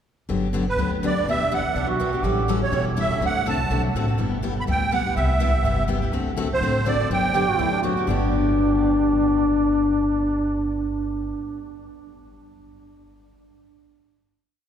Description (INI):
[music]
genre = acoustic string swing (jazz manouche)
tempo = 247 BPM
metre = 4/4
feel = swing 56% on 8ths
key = G major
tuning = A4 = 440 Hz
[part]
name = picked steel-string acoustic guitar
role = accompaniment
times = 0.3-11.6 s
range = G2 to A4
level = -24 LUFS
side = left 3 dB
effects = none
[part]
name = upright bass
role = bass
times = 0.3-11.3 s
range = E1 to D2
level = -26 LUFS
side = equal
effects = none
[part]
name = musette accordion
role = melody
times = 0.7-7.8 s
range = B4 to B5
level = -25 LUFS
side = right 3 dB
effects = none
[part]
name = mellow duduk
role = second line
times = 1.8-2.5, 7.3-10.8 s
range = D4 to G4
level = -29 LUFS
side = right 4 dB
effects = none
[sound]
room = wet cathedral reverb, RT60 5.3 s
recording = recorded in a church or concert hall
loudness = -20 LUFS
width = side -8 dB against mid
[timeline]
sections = 0.3-8.1 A section; 8.1-10.0 final chord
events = none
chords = 0.3 Gmaj7; 1.3 Em9; 2.2 A7; 3.2 D7; 4.2 G6; 5.2 Cmaj7; 6.1 D7; 7.1 Gmaj7; 8.1 G